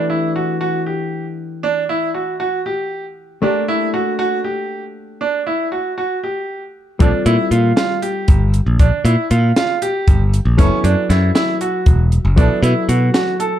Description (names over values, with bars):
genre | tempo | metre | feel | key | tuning
progressive instrumental, band music in an uneven meter | 235 BPM (eighths) | 7/8 | straight | unclear | A4 = 439 Hz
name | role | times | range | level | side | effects
hollow-body jazz guitar | accompaniment | 0.0-13.6 s | E3 to A4 | -22 LUFS | left 3 dB | none
bright baby grand piano | arpeggios | 0.0-13.6 s | C#4 to A4 | -19 LUFS | right 2 dB | none
modern bright picked electric bass | bass | 7.0-13.1 s | E1 to B2 | -13 LUFS | equal | none
compact cocktail drum kit | drums | 7.0-13.5 s | hi-hat, kick drum, snare drum | -15 LUFS | equal | none
room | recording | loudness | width
little or no reverb | dark, warm production | -14 LUFS | side -11 dB against mid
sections
0.0-13.6 A section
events
none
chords
0.0 Emadd9; 3.4 Gmadd9; 7.0 A#5; 10.6 F#m7; 12.4 Bm7